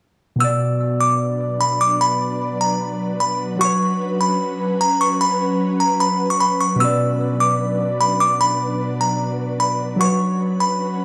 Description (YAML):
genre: hip hop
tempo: 150 BPM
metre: 4/4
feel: half-time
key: B harmonic minor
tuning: A4 = 440 Hz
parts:
  - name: delicate synth tine bell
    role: melody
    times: 0.4-11.0 s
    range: A#5 to E6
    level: -21 LUFS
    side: equal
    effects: chorus
  - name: muted felt-like synth keys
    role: accompaniment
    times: 0.4-11.0 s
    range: B2 to D5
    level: -24 LUFS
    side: equal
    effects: chorus
  - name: ethereal airy pad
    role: sustained chords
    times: 1.1-11.0 s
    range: F#3 to B4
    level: -28 LUFS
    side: equal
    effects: ensemble chorus, built-in reverb
room: light reverb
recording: dry, gritty hardware recording, studio reverb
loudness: -19 LUFS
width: mono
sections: 0.4-11.0 A section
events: none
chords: 0.4 Bm; 3.6 F#sus4; 6.8 Bm; 10.0 F#sus4